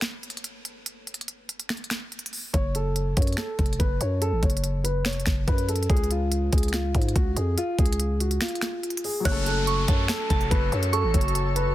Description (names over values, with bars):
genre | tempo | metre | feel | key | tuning
hip hop, trap | 143 BPM | 4/4 | half-time | F# harmonic minor | A4 = 440 Hz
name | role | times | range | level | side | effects
trap drum kit | drums | 0.0-11.7 s | crash cymbal, finger snaps, hi-hat, kick drum, snare drum | -25 LUFS | equal | overdrive
dark concert grand piano | melody | 2.5-11.7 s | E#4 to C#5 | -30 LUFS | equal | low-pass filter
growling 808-style bass | bass | 2.5-11.7 s | E#1 to G#2 | -26 LUFS | equal | none
dark grand piano | accompaniment | 9.2-11.7 s | F#3 to A4 | -34 LUFS | left 6 dB | none
soft synth bell | second line | 9.3-11.7 s | A5 to F#6 | -30 LUFS | right 6 dB | chorus, digital delay
glassy FM pad | sustained chords | 10.2-11.7 s | F#4 to A5 | -33 LUFS | left 1 dB | ensemble chorus, built-in reverb
downlifter | sound effects | 9.3-11.7 s | none | -33 LUFS | equal | none
room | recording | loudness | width
digital ambience | dense, heavily limited modern master, faint mains hum | -22 LUFS | side -14 dB against mid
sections
0.0-9.3 A section; 9.3-11.7 B section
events
break 0.0-2.5, 8.4-9.3; filter sweep on grand piano 0.0-2.5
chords
0.0 N.C.; 2.5 F#m; 5.9 C#; 9.3 F#m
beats
0.02 0.44 | 0.86 1.28 1.70 2.12 | 2.54 2.96 3.38 3.80 | 4.22 4.64 5.06 5.48 | 5.90 6.32 6.74 7.16 | 7.58 8.00 8.41 8.83 | 9.25 9.67 10.09 10.51 | 10.93 11.35